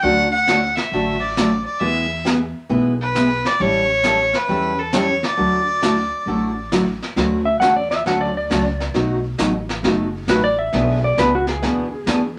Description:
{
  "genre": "country, western swing",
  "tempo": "134 BPM",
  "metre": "4/4",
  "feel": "swing 67% on 8ths",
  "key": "D major",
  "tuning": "A4 = 440 Hz",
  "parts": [
    { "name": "rich fiddle", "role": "melody", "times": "0.0-6.7 s", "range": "A4 to F#5", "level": "-21 LUFS", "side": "equal", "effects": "none" },
    { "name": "picked steel-string acoustic guitar", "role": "accompaniment", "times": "0.0-12.2 s", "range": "B2 to A4", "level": "-23 LUFS", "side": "equal", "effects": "none" },
    { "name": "upright bass", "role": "bass", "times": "0.0-12.4 s", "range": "F#1 to E2", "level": "-29 LUFS", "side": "equal", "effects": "none" },
    { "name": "vintage brush drum kit", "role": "drums", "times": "0.0-12.4 s", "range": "brushed snare drum, hi-hat, snare drum", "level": "-27 LUFS", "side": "equal", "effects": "none" },
    { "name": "clean lap steel guitar", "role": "second line", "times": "7.5-12.4 s", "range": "F#4 to F#5", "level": "-22 LUFS", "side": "equal", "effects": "none" }
  ],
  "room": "wet studio reverb, RT60 0.5 s",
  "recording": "none",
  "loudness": "-19 LUFS",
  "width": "mono",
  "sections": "0.0-7.2 A section; 7.2-12.4 B section",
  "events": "electric slide guitar solo 7.2-12.4",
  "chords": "0.0 D; 1.8 E; 3.6 A7; 5.4 Dadd9; 7.2 Dmaj7; 8.9 B7; 10.7 E7/B",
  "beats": "| 0.03 0.47 0.92 1.36 | 1.81 2.26 2.70 3.15 | 3.59 4.04 4.49 4.93 | 5.38 5.82 6.27 6.72 | 7.16 7.61 8.05 8.50 | 8.95 9.39 9.84 10.29 | 10.73 11.18 11.63 12.08"
}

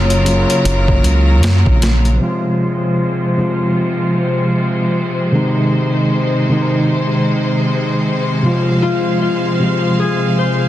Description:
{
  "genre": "trip hop",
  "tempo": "77 BPM",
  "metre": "4/4",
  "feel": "swing 60% on 16ths",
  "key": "F phrygian",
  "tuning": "A4 = 437 Hz",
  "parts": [
    { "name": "vibraphone with medium hard mallets", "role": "melody", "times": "0.0-1.0 s", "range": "Db5", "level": "-25 LUFS", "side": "left 4 dB", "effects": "dub echo" },
    { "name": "overdriven tine electric piano", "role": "accompaniment", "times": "0.0-10.7 s", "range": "C3 to F4", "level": "-15 LUFS", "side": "equal", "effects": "harmonic tremolo, tape echo" },
    { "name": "clear studio string section", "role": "sustained chords", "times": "0.0-10.7 s", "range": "C3 to F5", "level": "-20 LUFS", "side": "left 1 dB", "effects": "vintage 12-bit sampler grit, low-pass filter" },
    { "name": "deep dub fingered electric bass", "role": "bass", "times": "0.0-2.2 s", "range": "Gb1 to Gb2", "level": "-13 LUFS", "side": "equal", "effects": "none" },
    { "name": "boom bap sampler-style drum kit", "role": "drums", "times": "0.1-2.2 s", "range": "hi-hat, kick drum, snare drum", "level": "-18 LUFS", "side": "equal", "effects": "overdrive" },
    { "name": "concert harp", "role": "arpeggios", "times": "8.8-10.7 s", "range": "F4 to C5", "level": "-20 LUFS", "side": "left 7 dB", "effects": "tape echo" }
  ],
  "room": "light reverb, studio reverb",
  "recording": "dense, heavily limited modern master",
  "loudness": "-13 LUFS",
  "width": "side -13 dB against mid",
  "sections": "0.0-2.2 A section; 2.2-10.7 B section",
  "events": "filter sweep on string section 2.2-10.7",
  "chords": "0.0 Gbmaj7; 2.2 Fm; 5.3 Ab; 8.4 Fm",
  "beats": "0.65 1.42 | 2.20 2.98 3.76 4.54 | 5.32 6.10 6.88 7.66 | 8.44 9.22 10.00"
}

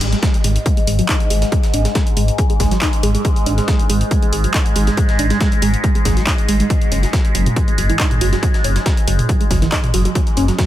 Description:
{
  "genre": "driving peak-time techno",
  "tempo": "139 BPM",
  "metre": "4/4",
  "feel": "straight",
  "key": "unclear",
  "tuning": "A4 = 439 Hz",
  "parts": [
    { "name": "tight sequenced synth", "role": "riff", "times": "0.0-10.7 s", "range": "E3 to D#4", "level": "-22 LUFS", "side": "right 2 dB", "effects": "chorus, phaser, tube saturation, cassette tape, sidechain pumping, digital delay" },
    { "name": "dark detuned saw bass", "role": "bass", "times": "0.0-10.5 s", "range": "F#1 to G#1", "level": "-17 LUFS", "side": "equal", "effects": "sidechain pumping" },
    { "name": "overtone-sweeping drone", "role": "drone", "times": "0.2-10.7 s", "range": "G#2 to G#3", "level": "-23 LUFS", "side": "equal", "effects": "chorus, built-in reverb, phaser, sidechain pumping" },
    { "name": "breakbeat sampler-style drum kit", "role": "drums", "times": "0.0-10.7 s", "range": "hi-hat, snare drum", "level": "-30 LUFS", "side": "equal", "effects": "sidechain pumping on hats, high-pass filter on hats, high-pass filter on snare" },
    { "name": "techno drum kit", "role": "drums", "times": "0.0-10.7 s", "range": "handclaps, hi-hat, toms", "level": "-24 LUFS", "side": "equal", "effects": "overdrive, sidechain pumping on hats, sidechain pumping on cymbals, sidechain pumping on toms" },
    { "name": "electronic kick drum", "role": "drums", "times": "0.2-10.7 s", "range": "none", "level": "-16 LUFS", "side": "equal", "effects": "overdrive" }
  ],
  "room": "digital ambience",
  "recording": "none",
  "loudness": "-14 LUFS",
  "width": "side -13 dB against mid",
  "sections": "0.0-10.7 A section",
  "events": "filter sweep on synth arpeggio sound 0.0-10.7",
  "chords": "0.0 G#5; 6.7 F#5",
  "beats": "0.23 0.66 1.09 | 1.52 1.95 2.38 2.82 | 3.25 3.68 4.11 4.54 | 4.97 5.41 5.84 6.27 | 6.70 7.13 7.56 8.00 | 8.43 8.86 9.29 9.72 | 10.15 10.59"
}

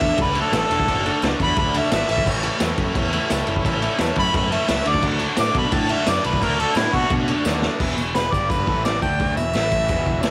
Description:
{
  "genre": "garage rock duo or trio",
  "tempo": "173 BPM",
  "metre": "4/4",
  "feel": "straight",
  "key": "unclear",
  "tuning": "A4 = 440 Hz",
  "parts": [
    { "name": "clear harmonica", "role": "melody", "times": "0.0-10.3 s", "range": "E4 to D6", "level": "-24 LUFS", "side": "equal", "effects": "overdrive" },
    { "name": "overdriven combo organ", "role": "sustained chords", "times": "0.0-10.3 s", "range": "D4 to A5", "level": "-35 LUFS", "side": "equal", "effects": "none" },
    { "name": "raw garage guitar", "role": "riff", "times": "0.0-10.3 s", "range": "E2 to D4", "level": "-28 LUFS", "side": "equal", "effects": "overdrive" },
    { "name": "growling picked electric bass", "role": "bass", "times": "0.0-10.3 s", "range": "E1 to B2", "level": "-29 LUFS", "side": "equal", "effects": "overdrive" },
    { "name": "raw garage drum kit", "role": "drums", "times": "0.0-10.3 s", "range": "crash cymbal, kick drum, ride cymbal, snare drum", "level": "-25 LUFS", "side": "equal", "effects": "cassette tape" },
    { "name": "tambourine", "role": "percussion", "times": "0.5-10.3 s", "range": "none", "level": "-41 LUFS", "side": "equal", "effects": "none" }
  ],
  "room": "studio reverb",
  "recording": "home recording on cassette",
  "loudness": "-20 LUFS",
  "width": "mono",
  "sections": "0.0-7.8 A section; 7.8-10.3 B section",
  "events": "transistor combo organ fill 7.3-7.8; drum fill 7.5-7.8; harmonica solo 7.8-10.3",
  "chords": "0.0 D; 2.1 A; 4.9 D; 7.8 E; 8.3 G5; 8.7 A5; 9.0 D5; 9.4 E; 9.5 A5; 9.9 E",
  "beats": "0.18 0.53 | 0.87 1.22 1.57 1.91 | 2.26 2.61 2.95 3.30 | 3.65 3.99 4.34 4.68 | 5.03 5.38 5.72 6.07 | 6.41 6.76 7.11 7.45 | 7.80 8.15 8.49 8.84 | 9.19 9.54 9.88 10.23"
}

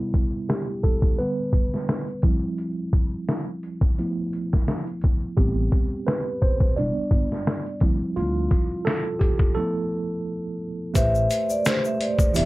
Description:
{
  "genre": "lo-fi hip hop",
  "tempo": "86 BPM",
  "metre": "4/4",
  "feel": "swing 56% on 16ths",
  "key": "A minor",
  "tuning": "A4 = 441 Hz",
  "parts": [
    { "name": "mellow tine electric piano", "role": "accompaniment", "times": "0.0-12.5 s", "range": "C3 to D5", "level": "-26 LUFS", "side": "right 2 dB", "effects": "medium stereo tremolo, low-pass filter" },
    { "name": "trip hop sampler-style drum kit", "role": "drums", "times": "0.1-12.5 s", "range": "hi-hat, kick drum, snare drum", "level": "-21 LUFS", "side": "equal", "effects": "none" },
    { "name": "upright bass", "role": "bass", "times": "5.4-12.5 s", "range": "E1 to D2", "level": "-26 LUFS", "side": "equal", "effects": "none" },
    { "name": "vibraphone with soft mallets", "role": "melody", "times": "11.0-12.5 s", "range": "C5 to E5", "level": "-23 LUFS", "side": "left 1 dB", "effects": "low-pass filter" },
    { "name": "tube shaker", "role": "percussion", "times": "11.0-12.5 s", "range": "none", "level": "-37 LUFS", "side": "left 5 dB", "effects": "none" }
  ],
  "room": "little or no reverb",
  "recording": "low-pass filter",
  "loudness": "-21 LUFS",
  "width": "side -19 dB against mid",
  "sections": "0.0-11.0 A section; 11.0-12.5 B section",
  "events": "tine electric piano solo 0.0-11.0; filter sweep 0.0-11.0; break 9.6-11.0",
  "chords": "0.0 Cmaj7; 1.2 G/D; 2.2 Cadd11/F; 4.0 Fmaj7#11; 5.4 Am9; 6.8 Em7; 7.8 Dm11; 9.6 Fmaj7#11; 11.0 Am9",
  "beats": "0.49 1.19 1.88 | 2.58 3.28 3.98 4.67 | 5.37 6.07 6.77 7.46 | 8.16 8.86 9.56 10.26 | 10.95 11.65 12.35"
}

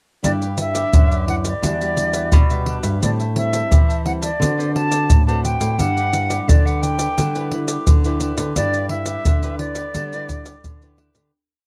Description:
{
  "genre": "samba and choro",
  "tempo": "87 BPM",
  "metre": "4/4",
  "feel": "straight",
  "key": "G major",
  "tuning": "A4 = 441 Hz",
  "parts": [
    { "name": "breathy concert flute", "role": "melody", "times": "0.2-10.9 s", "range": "D5 to A5", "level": "-26 LUFS", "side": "equal", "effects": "cassette tape" },
    { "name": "cavaquinho", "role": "accompaniment", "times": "0.2-11.3 s", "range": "D4 to A5", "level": "-35 LUFS", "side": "equal", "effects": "cassette tape" },
    { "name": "nylon-string guitar", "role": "accompaniment", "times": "0.2-11.3 s", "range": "A2 to B4", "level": "-32 LUFS", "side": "equal", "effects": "cassette tape" },
    { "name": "nylon-string guitar", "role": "bass", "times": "0.2-11.3 s", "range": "E2 to E3", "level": "-25 LUFS", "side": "equal", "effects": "none" },
    { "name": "maracas, surdo and pandeiro", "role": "percussion", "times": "0.2-11.3 s", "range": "none", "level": "-19 LUFS", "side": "equal", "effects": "none" }
  ],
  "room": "light reverb",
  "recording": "home recording on cassette",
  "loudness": "-19 LUFS",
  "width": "mono",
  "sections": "0.2-11.3 A section",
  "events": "fade-out 8.6-11.3",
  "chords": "0.2 G6; 1.6 Em9; 3.0 Am7; 4.4 D6; 5.8 G6",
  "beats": "| 0.23 0.93 1.62 2.32 | 3.02 3.71 4.40 5.10 | 5.79 6.48 7.17 7.87 | 8.56 9.25 9.95 10.64"
}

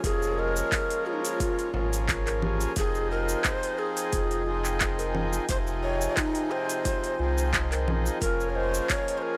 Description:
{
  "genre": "organic downtempo",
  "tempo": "88 BPM",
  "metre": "4/4",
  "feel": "swing 54% on 16ths",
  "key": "F minor",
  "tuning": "A4 = 440 Hz",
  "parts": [
    { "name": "hand-pumped harmonium", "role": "accompaniment", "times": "0.0-9.4 s", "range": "C3 to Ab4", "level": "-34 LUFS", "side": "equal", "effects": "sidechain pumping, analog delay" },
    { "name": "ethereal airy pad", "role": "sustained chords", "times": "0.0-9.4 s", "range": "Db4 to Ab5", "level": "-42 LUFS", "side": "equal", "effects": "none" },
    { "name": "kalimba", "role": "arpeggios", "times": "0.0-9.2 s", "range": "F4 to Eb5", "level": "-38 LUFS", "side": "equal", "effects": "analog delay" },
    { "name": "warm sub bass", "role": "bass", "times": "0.0-8.8 s", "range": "F1 to C2", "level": "-33 LUFS", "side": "equal", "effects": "sidechain pumping" },
    { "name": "afro-pop drum kit", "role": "drums", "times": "0.0-9.2 s", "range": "cabasa, congas, handclaps, hi-hat", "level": "-32 LUFS", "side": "equal", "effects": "overdrive" },
    { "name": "electronic kick drum", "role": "drums", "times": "0.0-9.0 s", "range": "none", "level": "-34 LUFS", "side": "equal", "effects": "overdrive" },
    { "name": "breathy low Native American-style wooden flute", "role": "melody", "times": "0.1-9.4 s", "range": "Eb4 to Db5", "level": "-33 LUFS", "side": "equal", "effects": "analog delay" },
    { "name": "frame drum", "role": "percussion", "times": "1.7-1.9 s", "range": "none", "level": "-40 LUFS", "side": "equal", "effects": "none" }
  ],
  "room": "light reverb, small room reverb",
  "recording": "dry, gritty hardware recording, transformer saturation",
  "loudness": "-27 LUFS",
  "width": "mono",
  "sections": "0.0-9.4 A section",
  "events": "none",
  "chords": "0.0 Bbm7/F; 2.8 Fm7; 8.2 Bbm7/F",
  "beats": "| 0.04 0.72 1.40 2.08 | 2.77 3.45 4.13 4.81 | 5.49 6.17 6.86 7.54 | 8.22 8.90"
}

